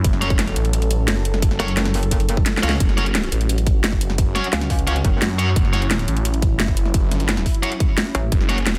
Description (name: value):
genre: dark technical drum and bass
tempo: 174 BPM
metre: 4/4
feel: straight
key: F# minor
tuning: A4 = 441 Hz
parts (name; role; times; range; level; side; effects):
- sweeping resonant pad; sustained chords; 0.0-8.8 s; F#3 to A4; -32 LUFS; equal; chorus, sidechain pumping
- phased detuned saw bass; bass; 0.0-8.8 s; F#1 to F#2; -23 LUFS; equal; phaser
- drum and bass drum kit; drums; 0.0-8.8 s; hi-hat, snare drum; -26 LUFS; equal; overdrive, studio reverb
- electronic kick drum; drums; 0.0-8.4 s; none; -22 LUFS; equal; studio reverb
- tight distorted guitar; stabs; 0.2-8.6 s; C#4 to C#5; -28 LUFS; equal; distortion, digital delay
- metallic wobble bass; bass; 1.6-5.2, 8.1-8.3 s; F#1 to C#2; -23 LUFS; equal; chorus
room: light reverb, digital ambience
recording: dense, heavily limited modern master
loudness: -19 LUFS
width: mono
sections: 0.0-2.8 A section; 2.8-8.8 A section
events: drop 0.0-2.8, 2.8-8.8; kick drops out 2.5-2.8; drum fill 2.5-2.8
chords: 0.0 F#5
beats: | 0.04 0.39 0.73 1.08 | 1.42 1.77 2.11 2.46 | 2.80 3.15 3.49 3.84 | 4.18 4.53 4.87 5.22 | 5.56 5.91 6.25 6.60 | 6.94 7.29 7.63 7.98 | 8.32 8.66